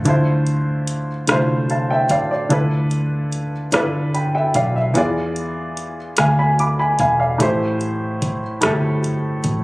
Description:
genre	slow six-eight R&B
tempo	49 BPM (dotted quarters)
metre	6/8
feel	straight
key	D minor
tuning	A4 = 439 Hz
part	warm baby grand piano	accompaniment	0.0-9.6 s	A2 to D6	-19 LUFS	equal	none
part	vintage muted fingered electric bass	bass	0.0-9.6 s	E1 to E2	-22 LUFS	equal	none
part	smooth R&B drum kit	drums	0.1-9.6 s	hi-hat, kick drum, rim click	-21 LUFS	equal	none
room	light reverb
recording	recorded on a phone in the room, club reverb, compression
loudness	-16 LUFS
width	side -21 dB against mid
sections	0.1-9.6 A section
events	none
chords	0.1 Dm9; 2.5 G13/D; 5.0 E7b9; 7.4 Am7

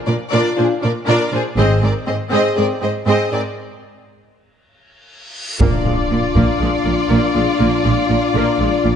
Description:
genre	cinematic, epic orchestral film score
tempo	120 BPM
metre	4/4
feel	straight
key	Bb mixolydian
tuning	A4 = 440 Hz
part	warm symphonic violin section	second line	0.1-9.0 s	F4 to Eb5	-22 LUFS	left 2 dB	none
part	warm symphonic viola section	accompaniment	0.1-8.9 s	Ab3 to Ab4	-21 LUFS	right 2 dB	none
part	warm symphonic cello section	bass	0.1-8.9 s	Ab2 to Bb2	-21 LUFS	right 3 dB	none
part	warm French horn section	sustained chords	0.6-9.0 s	C4 to Ab4	-20 LUFS	left 6 dB	none
part	rich symphonic double bass section	bass	1.6-1.8, 5.6-8.9 s	Ab1 to Bb1	-20 LUFS	right 2 dB	none
part	reverse cymbal and impact	sound effects	5.2-7.6 s	none	-26 LUFS	equal	none
part	warm studio violin section	melody	5.6-9.0 s	D5	-23 LUFS	left 3 dB	none
part	taiko ensemble	drums	5.6-6.6 s	none	-20 LUFS	equal	none
room	light reverb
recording	nothing above 10.4 kHz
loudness	-14 LUFS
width	side -8 dB against mid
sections	0.0-5.6 A section; 5.6-9.0 B section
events	build-up 0.0-5.6; break 3.6-5.6; reverse cymbal 5.2-5.6; impact 5.6-7.6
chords	0.0 Bb; 1.6 Ab; 3.6 N.C.; 5.6 Bb

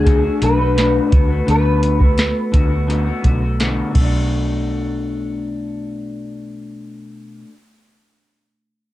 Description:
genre	indie pop, bedroom pop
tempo	85 BPM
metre	4/4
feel	straight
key	B minor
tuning	A4 = 440 Hz
part	electric guitar through a small old amp	melody	0.0-3.6 s	G#4 to B4	-21 LUFS	left 1 dB	ensemble chorus, plate reverb
part	electric guitar through a small old amp	accompaniment	0.0-7.6 s	B2 to F#4	-21 LUFS	left 3 dB	lush chorus, warbly pitch drift, plate reverb
part	vintage muted fingered electric bass	bass	0.0-7.4 s	B1 to D2	-20 LUFS	equal	none
part	soft vintage rhythm box	drums	0.1-4.1 s	crash cymbal, hi-hat, kick drum, snare drum	-16 LUFS	equal	none
room	light reverb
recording	dark, warm production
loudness	-15 LUFS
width	side -15 dB against mid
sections	0.0-4.3 A section; 4.3-7.1 B section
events	none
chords	0.0 Bm7

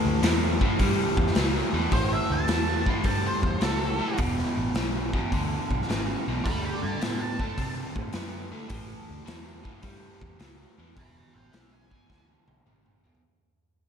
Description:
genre	blues rock power trio and southern rock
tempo	106 BPM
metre	4/4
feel	swing 68% on 8ths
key	A mixolydian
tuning	A4 = 441 Hz
part	overdriven electric guitar	riff	0.0-13.2 s	E2 to C4	-30 LUFS	equal	slapback echo
part	vintage muted picked electric bass	bass	0.1-13.0 s	E1 to C3	-31 LUFS	equal	none
part	raw garage drum kit	drums	0.2-13.2 s	hi-hat, kick drum, snare drum, toms	-28 LUFS	equal	none
part	octave-fuzz lead guitar	melody	1.9-12.3 s	A4 to C6	-32 LUFS	equal	wah, distortion
room	moderate lush hall reverb, RT60 1.5 s, studio reverb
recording	big arena sound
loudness	-24 LUFS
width	side -7 dB against mid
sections	0.0-13.2 A section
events	fade-out 0.0-13.2; drum fill 12.1-13.2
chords	0.0 A7; 4.2 E7(no3); 6.5 D7; 8.7 A7(no3); 11.0 E7

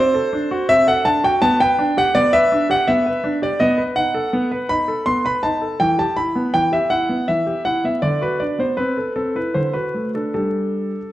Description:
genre	classical-period piano sonatina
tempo	81 BPM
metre	3/4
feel	rubato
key	G major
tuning	A4 = 441 Hz
part	clear concert grand piano	solo	0.0-11.1 s	D3 to C6	-16 LUFS	equal	none
room	moderate recital hall reverb, RT60 1.4 s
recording	dark, warm production, vinyl crackle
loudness	-16 LUFS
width	side -14 dB against mid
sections	0.0-11.1 A section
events	none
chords	0.0 D7/C; 1.4 G/B; 3.6 B7; 5.8 Em; 8.0 Bm/D; 8.8 Am/C; 9.5 D; 10.3 G5

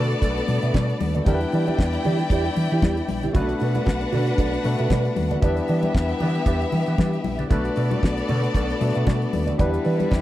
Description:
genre	disco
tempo	115 BPM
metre	4/4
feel	swing 56% on 16ths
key	B minor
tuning	A4 = 440 Hz
part	rich studio violin section	second line	0.0-10.2 s	G3 to G5	-28 LUFS	left 2 dB	none
part	barky tine electric piano	accompaniment	0.0-10.2 s	G3 to D5	-27 LUFS	left 2 dB	overdrive
part	mellow electric guitar	accompaniment	0.0-10.2 s	E4 to E5	-29 LUFS	right 7 dB	phaser
part	hollow-body short-scale fingered electric bass	bass	0.0-10.2 s	A#1 to E3	-24 LUFS	equal	none
part	damped 70s drum kit	drums	0.1-10.2 s	hi-hat, kick drum, snare drum	-21 LUFS	equal	none
part	congas	percussion	0.2-10.2 s	none	-30 LUFS	left 4 dB	none
room	small room ambience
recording	dry, close 1970s-style studio recording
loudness	-20 LUFS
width	side -14 dB against mid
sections	0.0-10.2 A section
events	none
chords	0.0 Bm7; 1.3 Em7; 3.3 Bm7; 5.4 Em7; 7.5 Bm7; 9.6 Em7

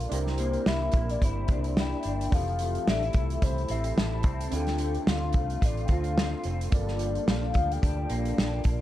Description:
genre	indie pop, bedroom pop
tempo	109 BPM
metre	4/4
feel	swing 55% on 16ths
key	F major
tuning	A4 = 441 Hz
part	electric guitar through a small old amp	accompaniment	0.0-8.8 s	G2 to Bb4	-34 LUFS	left 4 dB	ensemble chorus, vibrato effect
part	warbly lo-fi synth keys	accompaniment	0.0-8.8 s	E3 to Bb4	-36 LUFS	right 5 dB	chorus
part	vintage muted fingered electric bass	bass	0.0-8.8 s	F1 to D2	-30 LUFS	equal	none
part	loose indie drum kit	drums	0.0-8.8 s	hi-hat, kick drum, snare drum	-27 LUFS	equal	none
part	soft octave-layered synth lead	melody	0.1-8.6 s	C5 to A5	-34 LUFS	left 4 dB	lush chorus
room	small room ambience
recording	dark, warm production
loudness	-25 LUFS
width	side -14 dB against mid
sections	0.0-8.8 A section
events	none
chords	0.1 C9; 2.3 Fmaj7; 4.5 Dm7; 6.7 Gm7

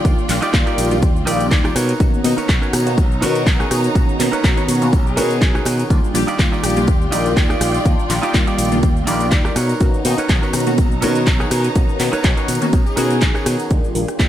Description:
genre	filtered disco house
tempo	123 BPM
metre	4/4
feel	swing 54% on 16ths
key	unclear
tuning	A4 = 440 Hz
part	funky polysynth comp	accompaniment	0.0-14.3 s	Eb3 to D5	-22 LUFS	left 1 dB	chorus, phaser, sidechain pumping, low-pass filter
part	clear studio violin section	sustained chords	0.0-14.3 s	D#4 to A#5	-26 LUFS	right 1 dB	vintage 12-bit sampler grit, sidechain pumping, low-pass filter
part	semi-hollow electric guitar	riff	0.0-14.2 s	Eb4 to D5	-25 LUFS	right 2 dB	sidechain pumping, low-pass filter
part	modern bright fingered electric bass	bass	0.0-14.3 s	Bb1 to B2	-21 LUFS	equal	sidechain pumping, low-pass filter
part	electronic kick drum	drums	0.0-14.3 s	none	-16 LUFS	equal	none
part	house drum kit	drums	0.0-14.3 s	handclaps, hi-hat, ride cymbal, rim click, shaker	-24 LUFS	equal	sidechain pumping on hats, sidechain pumping on perc, sidechain pumping on cymbals
part	tambourine	percussion	0.1-14.3 s	none	-35 LUFS	left 4 dB	sidechain pumping on perc, low-pass filter on perc
part	warm horn section	melody	2.2-7.1, 10.1-13.5 s	D#4 to Ab4	-28 LUFS	left 2 dB	vintage 12-bit sampler grit, sidechain pumping, low-pass filter, ping-pong delay
room	light reverb, digital ambience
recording	none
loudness	-14 LUFS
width	side -12 dB against mid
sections	0.0-13.7 A section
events	drop 0.0-13.7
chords	0.0 Ebmaj9; 1.8 Bmaj9; 5.9 Ebmaj9; 9.6 Bmaj9; 13.7 Ebmaj9

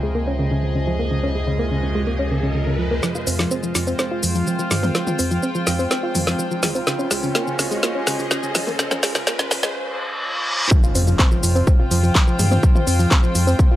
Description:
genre	melodic techno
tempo	125 BPM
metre	4/4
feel	straight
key	F minor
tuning	A4 = 440 Hz
part	deep dark ambient pad	sustained chords	0.0-13.8 s	Ab3 to C5	-29 LUFS	right 2 dB	chorus, built-in reverb, sidechain pumping
part	soft round pluck	arpeggios	0.0-13.8 s	Db3 to F4	-24 LUFS	equal	chorus, sidechain pumping, analog delay
part	round analog bass	bass	0.0-13.5 s	F1 to G2	-22 LUFS	equal	sidechain pumping
part	overtone-sweeping drone	drone	0.0-3.1 s	F2 to C3	-34 LUFS	right 1 dB	chorus, built-in reverb, sidechain pumping
part	riser, reverse cymbal and impact	sound effects	0.9-12.6 s	none	-28 LUFS	equal	none
part	warm studio string section	texture	0.0-13.8 s	Db4 to G5	-28 LUFS	left 1 dB	sidechain pumping
part	deep house drum kit	drums	3.0-13.7 s	handclaps, hi-hat, shaker, snare drum, toms	-22 LUFS	equal	sidechain pumping on perc, sidechain pumping on hats, sidechain pumping on toms
part	electronic kick drum	drums	10.7-13.7 s	none	-15 LUFS	equal	none
room	little or no reverb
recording	dry, gritty hardware recording, high-pass filter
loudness	-17 LUFS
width	side -14 dB against mid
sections	0.0-3.0 A section; 3.0-10.7 B section; 10.7-13.8 C section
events	filter sweep on ambient pad 0.0-3.0; riser 0.9-3.0, 3.0-9.8; build-up 3.0-10.7; drum fill 3.0-9.8; filter sweep on synth arpeggio sound 3.0-10.7; filter sweep 3.0-10.7; reverse cymbal 9.8-10.7; drop 10.7-13.8; impact 10.7-12.6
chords	0.0 Dbmaj7; 3.0 Fm; 6.9 Dbmaj7; 10.7 Fm

